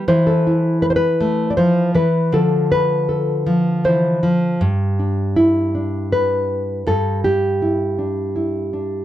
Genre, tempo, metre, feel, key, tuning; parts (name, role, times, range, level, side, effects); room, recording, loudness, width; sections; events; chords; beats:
folk, solo fingerstyle acoustic guitar; 80 BPM; 3/4; straight; A4 = 440 Hz
nylon-string guitar; solo; 0.0-9.0 s; G2 to D5; -16 LUFS; equal
light reverb; dry, close 1970s-style studio recording; -16 LUFS; side -12 dB against mid
0.0-4.6 A section; 4.6-9.0 B section
0.1 Am/E; 2.3 Dm7; 4.6 G6
| 0.08 0.82 1.57 | 2.32 3.08 3.84 | 4.61 5.37 6.12 | 6.87 7.61 8.36